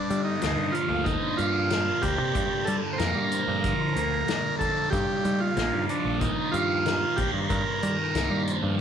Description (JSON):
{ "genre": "psychedelic rock", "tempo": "93 BPM", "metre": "4/4", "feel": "straight", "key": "G minor", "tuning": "A4 = 440 Hz", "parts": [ { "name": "combo organ", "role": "melody", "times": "0.0-8.4 s", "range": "D4 to C5", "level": "-28 LUFS", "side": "right 2 dB", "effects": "slapback echo" }, { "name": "thick fuzz guitar", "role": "riff", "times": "0.0-8.8 s", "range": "G2 to Eb4", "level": "-28 LUFS", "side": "equal", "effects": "distortion, phaser" }, { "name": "picked electric bass", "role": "bass", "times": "0.1-8.8 s", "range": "Bb1 to G3", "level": "-30 LUFS", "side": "equal", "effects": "none" }, { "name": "soft-mallet drum kit", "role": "drums", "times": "0.1-8.6 s", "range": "hi-hat, kick drum, snare drum", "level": "-32 LUFS", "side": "left 3 dB", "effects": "none" } ], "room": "light reverb", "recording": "1960s-style stereo", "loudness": "-23 LUFS", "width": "side -8 dB against mid", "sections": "0.0-8.8 A section", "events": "none", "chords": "0.0 Gm7; 4.9 Ebadd9" }